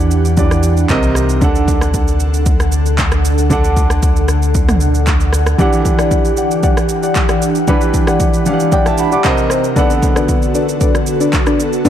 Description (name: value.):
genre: amapiano.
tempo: 115 BPM.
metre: 4/4.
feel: straight.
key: E minor.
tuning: A4 = 440 Hz.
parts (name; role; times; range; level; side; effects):
clear grand piano; accompaniment; 0.0-11.9 s; C3 to D6; -18 LUFS; right 2 dB; none.
airy breathy pad; sustained chords; 0.0-11.9 s; C3 to F#5; -19 LUFS; equal; chorus, sidechain pumping.
punchy sub bass; bass; 0.0-5.6 s; C2 to E2; -14 LUFS; equal; none.
deep house drum kit; drums; 0.1-11.9 s; handclaps, kick drum, rim click, shaker, toms; -16 LUFS; equal; overdrive.
deep mellow chord stab; stabs; 5.6-11.9 s; D4 to F#5; -18 LUFS; left 4 dB; chorus, ping-pong delay.
room: light reverb, digital ambience.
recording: dark, warm production.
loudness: -11 LUFS.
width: side -10 dB against mid.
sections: 0.0-11.9 A section.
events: none.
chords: 0.0 Em9; 0.9 Cm7; 1.4 D; 5.6 Em9; 9.2 Cm7; 9.8 Bm7/D.